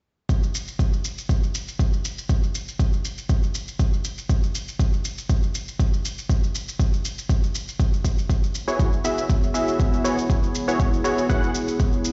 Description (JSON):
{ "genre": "afro house", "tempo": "120 BPM", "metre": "4/4", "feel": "swing 54% on 16ths", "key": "unclear", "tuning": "A4 = 440 Hz", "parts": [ { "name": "electronic kick drum", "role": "drums", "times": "0.3-11.9 s", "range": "none", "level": "-23 LUFS", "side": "equal", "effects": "overdrive" }, { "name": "shaker", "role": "drums", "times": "0.3-12.1 s", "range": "none", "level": "-36 LUFS", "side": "equal", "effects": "overdrive" }, { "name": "dark analog pad", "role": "sustained chords", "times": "8.7-12.1 s", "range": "B3 to C#5", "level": "-30 LUFS", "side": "equal", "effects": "chorus, sidechain pumping" }, { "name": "warm analog keys", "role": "stabs", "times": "8.7-11.5 s", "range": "B3 to F#5", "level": "-27 LUFS", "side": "equal", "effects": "chorus, sidechain pumping, tape echo" } ], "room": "digital ambience", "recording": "played on a big sound system in a bare room, stone room reverb, nothing above 7.8 kHz", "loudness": "-23 LUFS", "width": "mono", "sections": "0.3-12.1 A section", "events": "none", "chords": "0.3 N.C.; 8.3 E6", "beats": "| 0.29 0.80 1.29 1.79 | 2.29 2.79 3.29 3.79 | 4.29 4.79 5.29 5.79 | 6.29 6.79 7.29 7.79 | 8.29 8.79 9.29 9.79 | 10.29 10.79 11.29 11.79" }